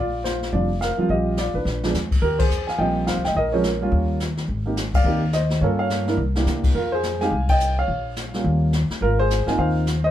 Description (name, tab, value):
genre	jazz piano trio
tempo	212 BPM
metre	4/4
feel	swing 61% on 8ths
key	Eb major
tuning	A4 = 441 Hz
part	warm baby grand piano	melody	0.0-10.1 s	F3 to Ab5	-22 LUFS	right 1 dB	none
part	upright bass	bass	0.0-10.1 s	F1 to C3	-24 LUFS	equal	none
part	jazz brush drum kit	drums	0.2-10.1 s	brushed snare drum, crash cymbal, hi-hat, kick drum, ride cymbal, snare drum	-26 LUFS	left 2 dB	none
room	light reverb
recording	band playing live in one room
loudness	-19 LUFS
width	side -12 dB against mid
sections	0.0-2.2 A section; 2.2-10.1 B section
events	drum fill 1.7, 6.2; band accent 2.4, 4.9, 7.5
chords	0.0 Bb6; 1.7 Bb(b9); 2.2 Eb6; 3.4 Bbm; 3.9 Eb7; 4.5 Abmaj7; 5.6 Gm7b5; 6.2 C7; 6.8 Fm7; 7.9 Bbm; 8.4 Eb7; 9.0 Ab6